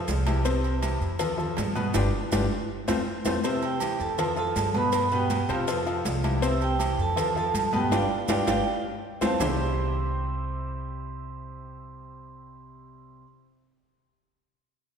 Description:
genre	latin, salsa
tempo	161 BPM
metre	4/4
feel	straight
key	C major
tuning	A4 = 440 Hz
part	clear grand piano	accompaniment	0.0-13.2 s	B2 to C5	-30 LUFS	left 3 dB	none
part	upright bass	bass	0.0-13.2 s	G1 to G2	-30 LUFS	right 1 dB	none
part	congas	percussion	0.1-9.5 s	none	-34 LUFS	left 1 dB	none
part	cowbell and bongos	percussion	0.1-9.5 s	none	-34 LUFS	left 4 dB	none
part	maracas	percussion	0.1-9.5 s	none	-40 LUFS	right 5 dB	none
part	timbales and agogo bells	percussion	0.1-9.5 s	none	-34 LUFS	right 5 dB	none
part	vibraphone with hard mallets	melody	3.5-13.2 s	F4 to E6	-30 LUFS	right 4 dB	none
room	wet scoring stage reverb, RT60 1.9 s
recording	recorded in a church or concert hall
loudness	-24 LUFS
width	side -7 dB against mid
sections	0.0-3.4 A section; 3.4-9.4 B section; 9.4-12.4 C section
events	drum fill 1.9-3.4, 8.7-9.4; band accent 1.9-3.4, 7.9-9.4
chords	0.5 C; 1.2 F; 1.9 G5; 2.7 F; 3.4 C; 4.2 F; 4.9 G7; 5.7 C; 7.2 F; 7.9 G5; 8.7 F; 9.4 C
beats	0.08 | 0.46 0.83 1.20 1.57 | 1.95 2.32 2.69 3.07 | 3.44 3.81 4.19 4.56 | 4.93 5.30 5.68 6.05 | 6.42 6.79 7.17 7.54 | 7.91 8.29 8.66 9.03 | 9.40 9.77 10.15 10.52 | 10.89 11.26 11.63 12.01

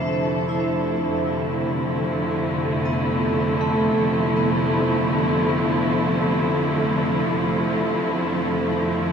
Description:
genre	ambient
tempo	free time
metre	none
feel	none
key	F lydian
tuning	A4 = 438 Hz
part	muted studio string section	sustained chords	0.0-9.1 s	F2 to A4	-21 LUFS	equal	none
part	vibraphone with medium hard mallets	arpeggios	0.0-9.1 s	A3 to E5	-26 LUFS	equal	diffuse ambient delay
part	bowed-like drone	drone	0.0-9.1 s	C3 to F3	-27 LUFS	equal	built-in reverb
room	wet huge ambient reverb, RT60 7.6 s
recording	none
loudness	-19 LUFS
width	side -7 dB against mid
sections	0.0-9.1 A section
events	none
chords	0.0 Fmaj7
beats	free time

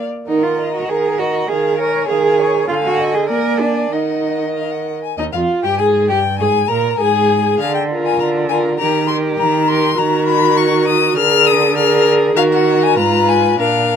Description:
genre	quick classical-period movement for string quartet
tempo	100 BPM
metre	2/4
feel	straight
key	Eb minor, Eb major from 5.2 s, Eb minor from 10.0 s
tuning	A4 = 440 Hz
part	rich violin	melody	0.0-14.0 s	Eb5 to F6	-18 LUFS	left 9 dB	none
part	rich violin	second line	0.0-14.0 s	Eb4 to F5	-20 LUFS	left 2 dB	none
part	rich viola	accompaniment	0.0-14.0 s	D3 to Bb4	-18 LUFS	right 3 dB	none
part	rich cello	bass	0.3-14.0 s	Eb2 to Bb4	-19 LUFS	right 4 dB	none
room	light reverb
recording	none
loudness	-13 LUFS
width	side -8 dB against mid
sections	0.0-5.2 A section; 5.2-14.0 B section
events	none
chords	0.3 Ebm; 1.5 Db/Eb; 2.7 Ddim; 3.3 Bb7; 3.9 Ebm; 5.2 N.C.; 6.4 Absus2; 7.6 Bb/D; 8.8 Eb; 10.0 Ebm; 11.2 Bb7/D; 12.4 Ebm; 13.0 Fdim/Ab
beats	| 0.28 0.89 | 1.49 2.09 | 2.69 3.29 | 3.92 4.56 | 5.18 5.79 | 6.40 7.00 | 7.60 8.20 | 8.79 9.38 | 9.97 10.57 | 11.16 11.76 | 12.36 12.97 | 13.59

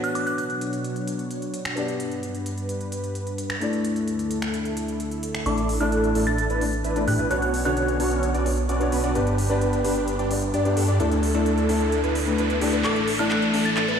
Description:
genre	EDM, festival progressive house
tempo	130 BPM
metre	4/4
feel	straight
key	D major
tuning	A4 = 439 Hz
part	glassy synth bell	melody	0.0-0.5, 5.5-8.3, 12.8-14.0 s	D6 to A6	-29 LUFS	right 1 dB	chorus, digital delay
part	felt-muted upright piano	accompaniment	0.0-13.6 s	D3 to D5	-27 LUFS	left 3 dB	digital delay
part	lush unison pad	sustained chords	0.0-14.0 s	D2 to C#5	-32 LUFS	equal	chorus
part	big-room dance drum kit	drums	0.0-14.0 s	finger snaps, handclaps, hi-hat	-34 LUFS	equal	none
part	wide unison lead	arpeggios	5.5-14.0 s	G4 to D5	-30 LUFS	right 1 dB	ensemble chorus, digital delay
part	supersaw chords	riff	5.5-14.0 s	B3 to D5	-27 LUFS	right 1 dB	low-pass filter, digital delay
part	wide detuned saw bass	bass	5.5-14.0 s	G1 to A2	-26 LUFS	right 1 dB	chorus
part	riser	sound effects	8.3-14.0 s	none	-32 LUFS	right 1 dB	none
room	moderate lush hall reverb, RT60 2.9 s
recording	played on a big sound system in a bare room, stone room reverb, high-pass filter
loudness	-21 LUFS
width	side -7 dB against mid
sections	0.0-5.5 A section; 5.5-14.0 B section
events	filter sweep on analog synth pad 0.0-5.5; build-up 5.5-14.0; filter sweep on supersaw synth 5.5-14.0; filter sweep on analog synth lead 5.5-14.0; filter sweep 5.5-14.0; riser 8.3-14.0; drum fill 12.8-14.0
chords	0.0 Bmadd9; 1.8 G; 3.6 Dsus2; 5.5 Asus4; 7.3 Bmadd9; 9.2 G; 11.0 Dsus2; 12.8 Asus4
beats	0.38 0.84 1.31 | 1.77 2.23 2.69 3.15 | 3.62 4.08 4.54 5.00 | 5.46 5.92 6.38 6.84 | 7.31 7.77 8.23 8.69 | 9.15 9.62 10.08 10.54 | 11.00 11.46 11.92 12.38 | 12.85 13.31 13.77

